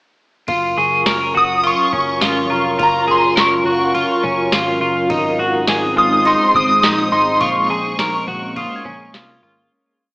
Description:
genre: dream pop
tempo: 104 BPM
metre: 4/4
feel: straight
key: Gb lydian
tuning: A4 = 440 Hz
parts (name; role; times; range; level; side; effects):
- shimmering ambient pad; sustained chords; 0.8-9.7 s; Gb3 to Bb4; -21 LUFS; equal; chorus, built-in reverb, cassette tape
- clean electric guitar; arpeggios; 0.5-9.7 s; C4 to Bb4; -19 LUFS; equal; analog chorus, cassette tape, tape echo
- vintage muted picked electric bass; bass; 0.5-9.7 s; F1 to C2; -30 LUFS; equal; none
- booming analog drum machine; drums; 0.5-9.3 s; kick drum, ride cymbal, snare drum, tambourine; -22 LUFS; equal; none
- glockenspiel with soft plastic mallets; texture; 0.8-3.3, 7.4-9.5 s; Bb5 to Ab6; -28 LUFS; equal; none
- shimmering bell with halo; melody; 1.4-9.1 s; Bb5 to Eb6; -16 LUFS; equal; ensemble chorus, cassette tape, tape echo
room: wet spring reverb, RT60 1.2 s, digital ambience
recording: home recording on cassette, AM radio sound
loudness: -13 LUFS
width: side -31 dB against mid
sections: 0.5-9.7 climax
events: fade-out 7.4-9.7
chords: 0.5 Gbmaj7; 5.1 Ab; 7.4 Bbm7

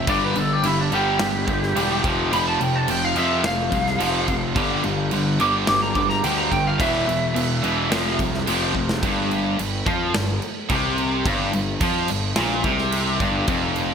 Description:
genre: hard rock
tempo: 108 BPM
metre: 4/4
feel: straight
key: G mixolydian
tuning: A4 = 440 Hz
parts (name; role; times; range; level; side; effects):
- lightly driven lead guitar; melody; 0.0-8.4 s; D4 to D6; -24 LUFS; equal; lush chorus
- distorted electric guitar; riff; 0.0-13.9 s; E2 to G3; -26 LUFS; left 9 dB; overdrive
- high-gain distorted guitar; riff; 0.0-13.9 s; E2 to G3; -26 LUFS; right 10 dB; distortion
- fuzz picked electric bass; bass; 0.0-13.9 s; E1 to F2; -27 LUFS; equal; overdrive
- overdriven electric guitar; riff; 0.1-13.9 s; E2 to G3; -28 LUFS; equal; spring reverb
- big rock drum kit; drums; 0.1-13.9 s; crash cymbal, kick drum, snare drum; -26 LUFS; right 1 dB; gated reverb
room: light reverb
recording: bright 1980s-style digital production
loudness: -19 LUFS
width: side -7 dB against mid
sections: 0.0-9.0 A section; 9.0-13.9 B section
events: lead electric guitar solo 0.0-9.0; drum fill 8.7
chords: 0.1 G5; 2.0 F5; 4.6 G5; 6.8 E5; 7.9 F5; 9.0 Gmadd11

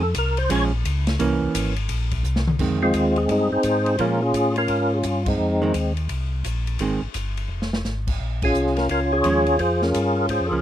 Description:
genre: soul jazz organ trio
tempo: 172 BPM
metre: 4/4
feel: swing 64% on 8ths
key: F minor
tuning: A4 = 440 Hz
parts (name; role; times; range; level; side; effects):
- percussive tonewheel organ; melody; 0.0-0.6, 2.8-5.9, 8.4-10.6 s; Ab3 to Db5; -20 LUFS; equal; slow rotary speaker, chorus vibrato
- mellow tonewheel organ; bass; 0.0-10.6 s; F1 to Bb2; -24 LUFS; equal; slow rotary speaker
- open jazz drum kit; drums; 0.1-10.4 s; crash cymbal, hi-hat, kick drum, ride cymbal, snare drum, toms; -29 LUFS; left 1 dB; none
- archtop guitar, miked and amplified; accompaniment; 0.5-7.0, 9.2-10.6 s; Eb3 to Db4; -23 LUFS; right 4 dB; none
room: little or no reverb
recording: dry, close 1970s-style studio recording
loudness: -19 LUFS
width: side -11 dB against mid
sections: 0.0-2.6 A section; 2.6-10.6 B section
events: tonewheel organ solo 0.0-2.6; drum fill 2.2-2.6, 7.5-7.8; band accent 5.2, 8.4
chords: 0.0 F5; 0.5 Bbm7; 1.2 C7b9; 2.6 Fm7; 4.0 Bbm7; 5.4 Fm7; 8.2 Bbm7

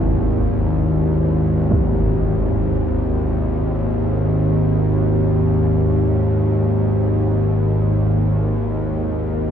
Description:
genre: dark ambient drone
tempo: free time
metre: none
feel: none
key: unclear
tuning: A4 = 440 Hz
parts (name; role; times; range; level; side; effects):
- bowed-like drone; drone; 0.0-9.5 s; G#1 to D#2; -16 LUFS; equal; built-in reverb
- bronze singing bowl; texture; 0.0-9.5 s; E4; -34 LUFS; equal; none
- impact; percussion; 1.7-1.9 s; none; -25 LUFS; equal; low-pass filter on sfx
room: wet cathedral reverb, RT60 5.2 s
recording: dark, warm production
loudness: -16 LUFS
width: side -8 dB against mid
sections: 0.0-9.5 A section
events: none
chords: 0.0 Emaj7/G#

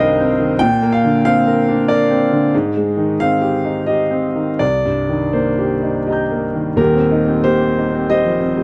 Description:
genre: neoclassical minimalist piano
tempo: 80-95 BPM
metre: 3/4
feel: rubato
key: unclear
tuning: A4 = 439 Hz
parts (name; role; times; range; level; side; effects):
- clear concert grand piano; solo; 0.0-8.6 s; Eb1 to G6; -16 LUFS; equal; none
room: studio ambience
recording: dry, close 1970s-style studio recording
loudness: -16 LUFS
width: mono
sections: 0.0-6.8 A section; 6.8-8.6 B section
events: none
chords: 0.0 Cm7; 0.6 Bbadd9; 2.5 Abmaj7; 4.6 Cm7; 6.8 Eb6

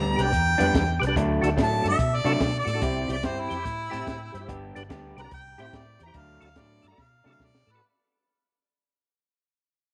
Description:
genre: electric blues shuffle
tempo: 144 BPM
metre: 4/4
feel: swing 65% on 8ths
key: unclear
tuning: A4 = 441 Hz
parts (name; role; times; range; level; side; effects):
- warm harmonica; melody; 0.0-7.8 s; E4 to Bb5; -31 LUFS; equal; overdrive
- electric guitar through a small old amp; riff; 0.0-7.5 s; G2 to G4; -32 LUFS; equal; none
- vintage muted fingered electric bass; bass; 0.0-7.8 s; G1 to C3; -32 LUFS; equal; none
- percussive tonewheel organ; accompaniment; 0.2-7.8 s; D4 to A5; -34 LUFS; equal; slow rotary speaker, overdrive, chorus vibrato
- compact cocktail drum kit; drums; 0.2-7.7 s; hi-hat, kick drum, snare drum; -32 LUFS; equal; none
room: moderate echo chamber reverb, RT60 2.3 s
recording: none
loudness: -25 LUFS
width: mono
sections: 0.0-7.8 A section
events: fade-out 0.0-7.8; tonewheel organ fill 3.7-4.5; drum fill 7.0-7.8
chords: 0.0 G; 1.2 D; 2.8 C; 4.5 G; 5.3 C; 6.2 D

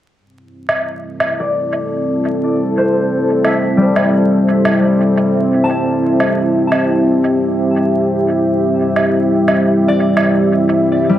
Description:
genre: ambient dub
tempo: 87 BPM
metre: 4/4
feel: straight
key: A minor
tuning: A4 = 441 Hz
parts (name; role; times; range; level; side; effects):
- deep dark ambient pad; sustained chords; 1.0-11.2 s; G3 to E5; -14 LUFS; equal; chorus, built-in reverb
- woodblock; drums; 0.7-10.3 s; none; -19 LUFS; equal; dub echo
- concert harp; arpeggios; 1.4-11.2 s; G3 to A5; -18 LUFS; left 2 dB; low-pass filter, tape echo
room: moderate spring reverb, RT60 2.4 s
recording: echo-heavy mix, vinyl crackle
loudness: -12 LUFS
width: side -12 dB against mid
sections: 0.2-11.2 A section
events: filter sweep on harp 0.2-11.2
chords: 0.2 Am7

